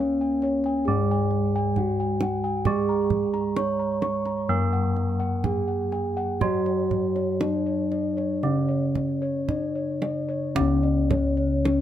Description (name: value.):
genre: Javanese gamelan.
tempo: 55-67 BPM.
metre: 4/4.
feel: straight.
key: C# pelog barang.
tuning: A4 = 440 Hz.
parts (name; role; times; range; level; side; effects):
gamelan-type bronze metallophone; melody; 0.0-11.8 s; C#4 to C#5; -26 LUFS; left 1 dB; none.
gamelan-type bronze metallophone; accompaniment; 0.0-11.8 s; C#3 to A#3+20c; -29 LUFS; right 5 dB; none.
gamelan-type bossed gongs; arpeggios; 0.0-11.8 s; C#5 to C#6; -31 LUFS; left 2 dB; tape echo.
gamelan-type bossed gongs; bass; 0.0-11.8 s; C#2 to A#4+20c; -28 LUFS; left 2 dB; none.
kendang; percussion; 0.4-11.8 s; none; -29 LUFS; right 4 dB; none.
gamelan-type bronze metallophone; arpeggios; 10.6-11.8 s; C#5; -34 LUFS; right 3 dB; none.
room: little or no reverb.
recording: close, detailed microphones.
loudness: -22 LUFS.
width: side -11 dB against mid.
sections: 0.0-10.6 A section; 10.6-11.8 B section.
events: none.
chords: none.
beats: 0.87 1.76 | 2.66 3.57 4.49 5.44 | 6.41 7.41 8.43 9.48 | 10.56 11.65.